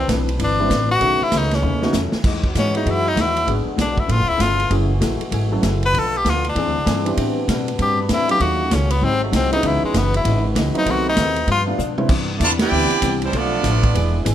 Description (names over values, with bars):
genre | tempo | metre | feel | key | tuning
jazz, big band swing | 195 BPM | 4/4 | swing 63% on 8ths | E major | A4 = 445 Hz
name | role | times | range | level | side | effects
edgy tenor saxophone | melody | 0.0-11.6 s | G#3 to B4 | -20 LUFS | left 2 dB | none
mellow trombone section | sustained chords | 0.0-14.3 s | B2 to B4 | -30 LUFS | equal | none
upright bass | bass | 0.0-14.3 s | C#1 to B2 | -22 LUFS | right 1 dB | none
vintage hollow-body jazz guitar | accompaniment | 0.1-14.3 s | G2 to G#4 | -26 LUFS | left 6 dB | none
vintage drum kit | drums | 0.1-14.3 s | crash cymbal, hi-hat, kick drum, ride cymbal, snare drum, toms | -24 LUFS | right 1 dB | none
warm concert grand piano | accompaniment | 0.6-12.1 s | E3 to A4 | -25 LUFS | right 2 dB | none
brilliant trumpet section | melody | 12.4-14.3 s | G3 to A5 | -21 LUFS | right 2 dB | none
clear trombone section | second line | 12.4-14.3 s | E3 to G4 | -24 LUFS | right 5 dB | none
room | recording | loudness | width
moderate large studio reverb, RT60 1.3 s | none | -16 LUFS | side -11 dB against mid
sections
0.0-2.2 A section; 2.2-12.1 A section; 12.1-14.3 B section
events
tenor saxophone solo 0.0-12.1; drum fill 1.6-2.2, 11.8-12.1; band accent 12.6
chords
0.0 Cmaj9; 1.0 B9; 2.2 Emaj9; 3.5 G#m7b5; 4.1 C#aug7; 4.7 F#m9; 5.9 Bm7b5; 6.6 E7alt; 7.2 Am11; 8.4 D#m7b5; 9.0 G#7; 9.6 C#m9; 10.9 B7b9; 11.5 G7; 12.1 Cmaj9; 13.3 Bm7b5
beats
0.08 0.39 0.70 | 1.01 1.32 1.63 1.93 | 2.24 2.55 2.86 3.17 | 3.48 3.78 4.09 4.40 | 4.71 5.02 5.32 5.63 | 5.94 6.25 6.56 6.86 | 7.17 7.48 7.79 8.10 | 8.40 8.71 9.02 9.33 | 9.63 9.94 10.25 10.56 | 10.87 11.17 11.48 11.79 | 12.10 12.41 12.71 13.02 | 13.33 13.64 13.95 14.26